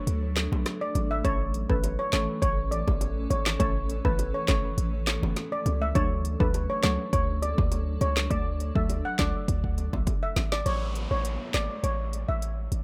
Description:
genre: dancehall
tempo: 102 BPM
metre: 4/4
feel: straight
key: unclear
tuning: A4 = 440 Hz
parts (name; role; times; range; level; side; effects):
- glassy wavetable pluck; accompaniment; 0.0-9.5 s; E3 to A4; -36 LUFS; equal; chorus
- granular cloud pad; sustained chords; 0.0-10.6 s; E3 to A4; -40 LUFS; equal; built-in reverb, sidechain pumping
- warm 808-style bass; bass; 0.1-12.8 s; F#1 to D2; -31 LUFS; equal; none
- afro-pop drum kit; drums; 0.1-12.8 s; handclaps, hi-hat, kick drum, rim click, snare drum; -31 LUFS; equal; none
- bongos; percussion; 0.4-10.5 s; none; -44 LUFS; equal; tape echo
- steel pan; melody; 0.8-12.4 s; B4 to F#5; -34 LUFS; equal; tape echo
- downlifter; sound effects; 10.7-12.8 s; none; -42 LUFS; equal; none
room: little or no reverb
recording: echo-heavy mix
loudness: -27 LUFS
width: mono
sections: 0.0-10.7 A section; 10.7-12.8 B section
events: break 0.1-1.2; drum fill 9.5-10.7; kick muted 10.7-12.8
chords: 0.0 D; 1.2 A; 6.0 D; 10.7 N.C.

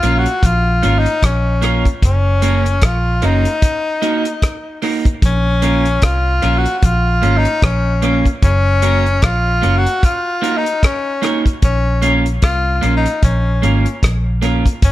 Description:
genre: roots reggae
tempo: 75 BPM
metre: 4/4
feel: swing 58% on 16ths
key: Bb minor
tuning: A4 = 440 Hz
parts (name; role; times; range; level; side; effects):
- bright tenor saxophone; melody; 0.0-14.9 s; Db4 to Gb4; -18 LUFS; left 2 dB; dub echo
- electric guitar at the edge of break-up; accompaniment; 0.0-14.7 s; Bb3 to Bb4; -19 LUFS; right 4 dB; wide subtle chorus, dub echo
- vintage muted fingered electric bass; bass; 0.0-14.9 s; Gb1 to C2; -15 LUFS; equal; none
- damped 70s drum kit; drums; 0.0-14.9 s; hi-hat, kick drum, rim click; -15 LUFS; equal; none
room: light reverb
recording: none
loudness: -13 LUFS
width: side -15 dB against mid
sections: 0.0-14.9 A section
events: none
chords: 0.0 Bbm; 2.0 Gb; 3.6 Ebm; 5.2 Bbm; 8.4 Gb; 10.0 Ebm; 11.6 Bbm

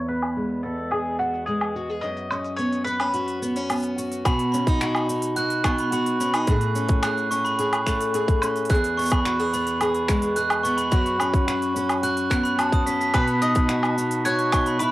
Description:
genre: folktronica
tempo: 108 BPM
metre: 4/4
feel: straight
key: B mixolydian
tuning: A4 = 440 Hz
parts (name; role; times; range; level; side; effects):
- mandolin; melody; 0.0-3.9, 13.1-14.9 s; F#4 to D#5; -27 LUFS; equal; cassette tape, analog delay
- fingerpicked steel-string acoustic guitar; arpeggios; 0.0-14.9 s; E2 to G#4; -24 LUFS; left 1 dB; cassette tape, analog delay
- organic electronic drum kit; drums; 0.1-14.9 s; finger snaps, hi-hat, shaker, woodblock; -28 LUFS; equal; overdrive
- glockenspiel with brass mallets; second line; 4.3-14.9 s; A5 to B6; -25 LUFS; right 2 dB; cassette tape, analog delay
- electronic kick drum; drums; 4.3-14.6 s; none; -22 LUFS; equal; overdrive
room: light reverb, small room reverb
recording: home recording on cassette, vinyl crackle, low-pass filter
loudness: -20 LUFS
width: side -16 dB against mid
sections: 0.0-4.3 A section; 4.3-14.9 B section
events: filter sweep 0.0-4.3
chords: 0.0 E; 2.0 F#sus4; 4.3 B; 6.5 Amaj7; 8.7 E; 10.9 F#sus4; 13.1 B

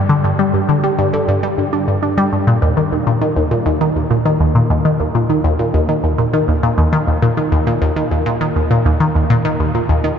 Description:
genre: ambient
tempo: 101 BPM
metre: 4/4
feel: straight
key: unclear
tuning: A4 = 439 Hz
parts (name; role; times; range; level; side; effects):
- resonant blip pluck; solo; 0.1-10.1 s; Eb2 to D4; -13 LUFS; equal; phaser, ping-pong delay
room: wet huge ambient reverb, RT60 7.6 s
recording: dark, warm production, nothing above 7.8 kHz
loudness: -13 LUFS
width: side -8 dB against mid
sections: 0.0-2.6 A section; 2.6-10.2 B section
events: none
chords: none

